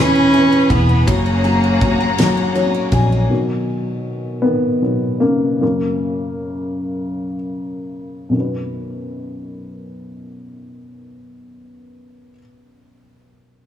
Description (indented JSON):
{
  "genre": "six-eight pop ballad",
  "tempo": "39-54 BPM (dotted quarters)",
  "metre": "6/8",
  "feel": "straight",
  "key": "B major",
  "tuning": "A4 = 439 Hz",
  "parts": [
    { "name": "clear cello", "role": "melody", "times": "0.0-2.6 s", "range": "A#3 to C#4", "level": "-16 LUFS", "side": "right 1 dB", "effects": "slapback echo" },
    { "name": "dark upright piano", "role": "accompaniment", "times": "0.0-13.7 s", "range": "B1 to G#5", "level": "-20 LUFS", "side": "left 2 dB", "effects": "none" },
    { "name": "dark studio string section", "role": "sustained chords", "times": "0.0-3.3 s", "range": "G#4 to B5", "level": "-21 LUFS", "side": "left 3 dB", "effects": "none" },
    { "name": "picked steel-string acoustic guitar", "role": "arpeggios", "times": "0.0-3.9 s", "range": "E3 to G#4", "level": "-24 LUFS", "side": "left 1 dB", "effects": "slapback echo" },
    { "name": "vintage muted fingered electric bass", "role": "bass", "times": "0.0-3.3 s", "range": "E1 to A#1", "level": "-19 LUFS", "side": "equal", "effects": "none" },
    { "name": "loose indie drum kit", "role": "drums", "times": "0.3-3.1 s", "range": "kick drum, ride cymbal, snare drum", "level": "-21 LUFS", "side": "equal", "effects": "none" }
  ],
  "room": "light reverb",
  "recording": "small room ambience",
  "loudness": "-15 LUFS",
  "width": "side -10 dB against mid",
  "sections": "0.0-3.3 A section; 3.3-8.3 B section; 8.3-11.4 C section",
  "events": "upright piano fill 2.2-3.3; slowing down 3.3-8.3; upright piano solo 3.3-8.3",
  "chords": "0.0 E; 1.1 F#add9; 3.3 B; 5.6 F#; 8.3 B"
}